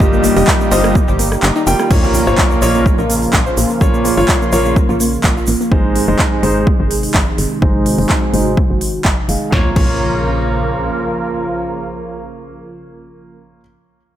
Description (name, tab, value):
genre	progressive house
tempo	126 BPM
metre	4/4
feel	straight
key	Bb minor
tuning	A4 = 438 Hz
part	filtered supersaw swell	sustained chords	0.0-13.4 s	C3 to C6	-21 LUFS	right 2 dB	sidechain pumping, low-pass filter
part	soft round pluck	arpeggios	0.0-5.7 s	Bb3 to Eb5	-19 LUFS	equal	lush chorus, sidechain pumping, dub echo
part	clear concert grand piano	stabs	0.0-13.6 s	G2 to G5	-18 LUFS	equal	sidechain pumping, low-pass filter, dub echo
part	tight sequencer bass	bass	0.0-10.9 s	F1 to Bb1	-19 LUFS	equal	sidechain pumping
part	electronic kick drum	drums	0.0-9.9 s	none	-15 LUFS	equal	overdrive
part	egg shaker	percussion	0.0-5.7 s	none	-27 LUFS	right 4 dB	none
part	big-room dance drum kit	drums	0.2-9.9 s	crash cymbal, handclaps, hi-hat, rim click, snare drum	-20 LUFS	equal	sidechain pumping on hats, sidechain pumping on cymbals
part	impact	sound effects	1.9-3.8, 9.6-13.4 s	none	-25 LUFS	equal	none
room	light reverb, digital ambience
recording	none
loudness	-12 LUFS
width	side -11 dB against mid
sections	0.0-1.9 A section; 1.9-9.5 B section; 9.5-13.3 C section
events	drop 0.0-1.9; kick drops out 1.4-1.9; impact 1.9-3.8; filter sweep on analog synth bass 1.9-9.5; filter sweep on grand piano 1.9-9.5; filter sweep on supersaw synth 1.9-9.5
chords	0.0 Ebadd9; 1.9 Bbm; 5.7 Ab; 9.5 Bbm